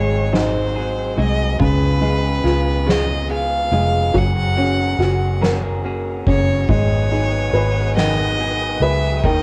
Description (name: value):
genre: six-eight pop ballad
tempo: 47 BPM (dotted quarters)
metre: 6/8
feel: straight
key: unclear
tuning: A4 = 440 Hz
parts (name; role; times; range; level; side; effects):
- clear violin; melody; 0.0-9.4 s; B4 to F#5; -25 LUFS; equal; cassette tape
- dark upright piano; accompaniment; 0.0-9.4 s; C#3 to B4; -24 LUFS; equal; cassette tape
- direct-recorded clean electric guitar; arpeggios; 0.0-9.4 s; G#2 to A#4; -30 LUFS; equal; cassette tape
- vintage muted fingered electric bass; bass; 0.0-9.4 s; E#1 to D#2; -22 LUFS; equal; none
- soft-mallet drum kit; drums; 0.3-9.4 s; kick drum, ride cymbal, snare drum; -27 LUFS; equal; cassette tape
- warm studio string section; sustained chords; 6.7-9.4 s; A#4 to D#6; -34 LUFS; equal; cassette tape
room: light reverb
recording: home recording on cassette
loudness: -18 LUFS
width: mono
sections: 0.0-9.4 A section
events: none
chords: 0.0 G#7; 1.6 C#7; 4.1 F#add9; 6.7 G#m7